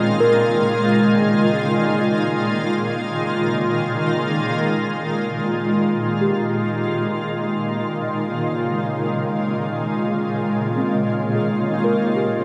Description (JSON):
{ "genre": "ambient", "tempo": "free time", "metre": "none", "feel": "none", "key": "Bb dorian", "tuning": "A4 = 441 Hz", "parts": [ { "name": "shimmering ambient pad", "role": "sustained chords", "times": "0.0-12.4 s", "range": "Bb2 to F4", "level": "-21 LUFS", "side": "equal", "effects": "chorus, built-in reverb" }, { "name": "small celesta", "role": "arpeggios", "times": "0.0-12.4 s", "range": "C4 to F5", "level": "-26 LUFS", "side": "equal", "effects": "tape echo" }, { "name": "hand-pumped harmonium", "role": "drone", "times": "5.1-12.4 s", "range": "Bb3 to F4", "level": "-39 LUFS", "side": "equal", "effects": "none" } ], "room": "wet cathedral reverb, RT60 5.9 s", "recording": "in a vast, echoing space", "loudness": "-20 LUFS", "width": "mono", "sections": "0.0-5.1 A section; 5.1-12.4 B section", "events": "none", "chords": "0.0 Bbm", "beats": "free time" }